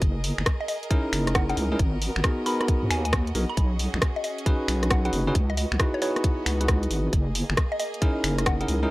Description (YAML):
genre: UK garage, two-step garage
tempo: 135 BPM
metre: 4/4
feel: swing 65% on 16ths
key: unclear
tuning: A4 = 440 Hz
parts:
  - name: clear studio violin section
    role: sustained chords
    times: 0.0-8.9 s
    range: A#3 to D#5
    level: -37 LUFS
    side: right 1 dB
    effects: sidechain pumping
  - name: deep soft wobble bass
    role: bass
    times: 0.0-8.9 s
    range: F#1 to G#2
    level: -26 LUFS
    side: equal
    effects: chorus
  - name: electronic kick drum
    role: drums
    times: 0.0-8.6 s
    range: none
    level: -24 LUFS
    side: equal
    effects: none
  - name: garage drum kit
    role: drums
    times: 0.0-8.8 s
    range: finger snaps, hi-hat, rim click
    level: -28 LUFS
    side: equal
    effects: none
  - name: mallet-like synth pluck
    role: melody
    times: 0.6-8.7 s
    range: C#5 to B5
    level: -33 LUFS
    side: equal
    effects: chorus, phaser, cassette tape, analog delay
  - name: bell-like tine electric piano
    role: stabs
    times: 0.9-8.9 s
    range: B3 to B4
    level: -28 LUFS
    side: equal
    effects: low-pass filter
room: digital ambience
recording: dry, gritty hardware recording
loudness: -22 LUFS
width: side -19 dB against mid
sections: 0.0-8.9 A section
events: none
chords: 0.0 F#13; 1.8 G#m7; 3.6 B6; 5.4 C#m11; 7.1 F#13